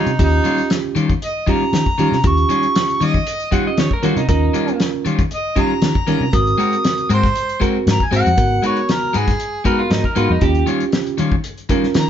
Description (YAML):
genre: straight-eighth soul blues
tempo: 117 BPM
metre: 4/4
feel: straight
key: Eb mixolydian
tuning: A4 = 440 Hz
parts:
  - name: mellow harmonica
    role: melody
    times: 0.0-12.1 s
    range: Eb4 to Eb6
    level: -20 LUFS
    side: equal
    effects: overdrive
  - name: bell-like tine electric piano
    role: accompaniment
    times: 0.0-12.1 s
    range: Cb4 to C5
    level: -21 LUFS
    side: right 6 dB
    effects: none
  - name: electric guitar at the edge of break-up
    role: stabs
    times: 0.0-11.9 s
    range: Eb3 to Cb5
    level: -22 LUFS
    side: left 4 dB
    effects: none
  - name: vintage muted fingered electric bass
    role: bass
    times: 0.0-12.1 s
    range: Ab1 to Eb3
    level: -19 LUFS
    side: left 1 dB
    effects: none
  - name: warm soul drum kit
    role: drums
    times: 0.1-12.1 s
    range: hi-hat, kick drum, snare drum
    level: -20 LUFS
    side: left 1 dB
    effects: none
  - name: electric guitar at the edge of break-up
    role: second line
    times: 3.5-4.8, 9.7-10.7 s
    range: Eb4 to Gb5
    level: -24 LUFS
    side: right 1 dB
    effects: slapback echo
room: light reverb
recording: band playing live in one room, nothing above 7.6 kHz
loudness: -15 LUFS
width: side -9 dB against mid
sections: 0.0-12.1 A section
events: none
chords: 0.0 Eb9; 6.3 Ab9; 8.4 Abm7; 10.4 Eb9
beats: | 0.20 0.71 1.22 1.73 | 2.24 2.75 3.26 3.78 | 4.29 4.80 5.31 5.82 | 6.33 6.84 7.36 7.87 | 8.38 8.89 9.40 9.91 | 10.42 10.93 11.45 11.96